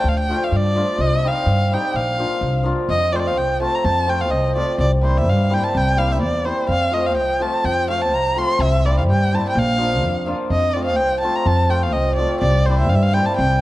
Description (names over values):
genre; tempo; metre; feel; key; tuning
balkan folk, Balkan wedding band; 126 BPM; 2/4; straight; unclear; A4 = 440 Hz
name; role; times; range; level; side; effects
warm erhu; melody; 0.0-13.6 s; C5 to C6; -21 LUFS; equal; none
hammered dulcimer; accompaniment; 0.0-13.6 s; F3 to G4; -22 LUFS; equal; none
upright bass; bass; 0.0-13.6 s; Bb1 to G2; -20 LUFS; equal; none
room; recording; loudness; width
moderate recital hall reverb, RT60 1.7 s; dark, warm production; -16 LUFS; side -16 dB against mid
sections
0.0-2.9 A section; 2.9-10.5 B section; 10.5-13.6 B section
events
none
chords
0.0 Dm; 1.0 Cm; 1.9 Bb; 2.9 F; 4.8 C7; 6.7 F; 8.6 C7; 9.6 Bb; 10.5 F; 12.4 C7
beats
| 0.05 0.52 | 1.00 1.47 | 1.95 2.42 | 2.90 3.37 | 3.84 4.32 | 4.79 5.27 | 5.75 6.22 | 6.70 7.17 | 7.65 8.13 | 8.61 9.08 | 9.56 10.04 | 10.52 11.00 | 11.48 11.96 | 12.44 12.92 | 13.40